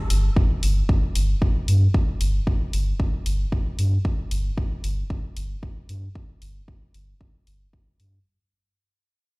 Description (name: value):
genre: dub techno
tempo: 114 BPM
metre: 4/4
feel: straight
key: unclear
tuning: A4 = 436 Hz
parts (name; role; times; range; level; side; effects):
- soft dub sub bass; bass; 0.1-8.2 s; G1 to G2; -21 LUFS; equal; sidechain pumping
- electronic hi-hat; drums; 0.1-8.1 s; none; -34 LUFS; left 1 dB; dub echo
- electronic kick drum; drums; 0.4-7.8 s; none; -22 LUFS; equal; none
room: little or no reverb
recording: played on a big sound system in a bare room, stone room reverb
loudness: -20 LUFS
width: side -28 dB against mid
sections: 0.0-8.3 A section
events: fade-out 0.0-8.3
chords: none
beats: 0.36 0.89 1.42 | 1.94 2.47 3.00 3.52 | 4.05 4.58 5.10 5.63 | 6.15 6.68 7.21 7.73